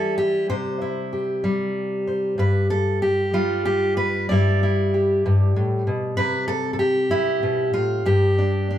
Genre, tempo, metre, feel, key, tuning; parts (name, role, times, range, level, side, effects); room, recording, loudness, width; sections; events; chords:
folk, solo fingerstyle acoustic guitar; 63 BPM (dotted quarters); 6/8; rubato; A4 = 439 Hz
fingerpicked steel-string acoustic guitar; solo; 0.0-8.8 s; G2 to D5; -19 LUFS; equal
wet stone room reverb, RT60 0.9 s; band playing live in one room; -19 LUFS; side -11 dB against mid
0.0-8.8 A section
0.5 C; 2.4 N.C.; 4.3 Em7/G; 6.2 C; 8.1 G5